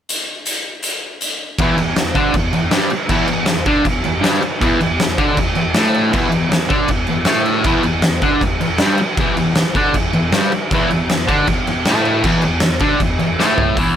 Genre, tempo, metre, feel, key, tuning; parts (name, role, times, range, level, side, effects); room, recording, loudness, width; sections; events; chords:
garage rock duo or trio; 158 BPM; 4/4; straight; E minor; A4 = 440 Hz
oversized low-tuned drum kit; drums; 0.1-13.9 s; crash cymbal, hi-hat, kick drum, snare drum, toms; -18 LUFS; equal
fuzz guitar; riff; 1.6-14.0 s; E2 to D4; -16 LUFS; equal; distortion
light reverb; -14 LUFS; side -9 dB against mid
0.1-1.6 A section; 1.6-13.8 B section
drum fill 13.4-13.8
0.1 N.C.; 1.6 Em